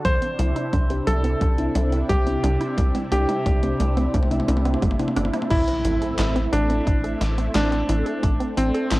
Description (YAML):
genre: synthwave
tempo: 88 BPM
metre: 4/4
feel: straight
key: A minor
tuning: A4 = 440 Hz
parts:
  - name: warm electric grand piano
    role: melody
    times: 0.0-9.0 s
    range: C4 to C5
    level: -26 LUFS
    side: equal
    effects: cassette tape, tape echo
  - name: analog string pad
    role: sustained chords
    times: 0.0-9.0 s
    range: C3 to E4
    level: -29 LUFS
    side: right 1 dB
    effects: ensemble chorus, sidechain pumping, cassette tape
  - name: wide unison pluck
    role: arpeggios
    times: 0.0-9.0 s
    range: G3 to A4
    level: -30 LUFS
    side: right 2 dB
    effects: cassette tape, tape echo
  - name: tight sequencer bass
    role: bass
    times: 0.0-9.0 s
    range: G1 to C2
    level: -23 LUFS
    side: equal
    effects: sidechain pumping
  - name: electronic kick drum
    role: drums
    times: 0.0-8.4 s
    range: none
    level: -24 LUFS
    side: equal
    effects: cassette tape
  - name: gated 80s digital drum machine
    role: drums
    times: 0.0-9.0 s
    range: crash cymbal, handclaps, hi-hat, snare drum, toms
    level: -29 LUFS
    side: equal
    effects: gated reverb, gated reverb snare, overdrive, cassette tape
  - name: mellow FM electric piano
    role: stabs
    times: 0.4-5.1 s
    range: C3 to G4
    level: -30 LUFS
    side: left 1 dB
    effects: chorus, cassette tape
  - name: impact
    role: sound effects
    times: 5.5-8.2 s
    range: none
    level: -33 LUFS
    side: equal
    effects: none
room: light reverb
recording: home recording on cassette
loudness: -19 LUFS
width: side -19 dB against mid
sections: 0.0-5.5 A section; 5.5-9.0 B section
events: drum fill 0.0-5.5; filter sweep on synth arpeggio sound 0.0-5.5; impact 5.5-8.2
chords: 0.1 Cadd9; 5.5 Am